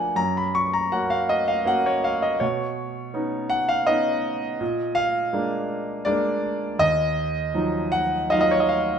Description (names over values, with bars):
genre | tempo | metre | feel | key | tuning
classical, lyrical solo piano | 81 BPM | 3/4 | rubato | Eb minor | A4 = 440 Hz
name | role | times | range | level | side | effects
clear concert grand piano | solo | 0.0-9.0 s | Eb2 to Db6 | -21 LUFS | equal | none
room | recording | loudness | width
moderate recital hall reverb, RT60 1.3 s | none | -21 LUFS | side -7 dB against mid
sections
0.0-9.0 A section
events
none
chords
0.2 Gb; 2.4 Badd9; 4.6 Bb7; 6.8 Ebmadd9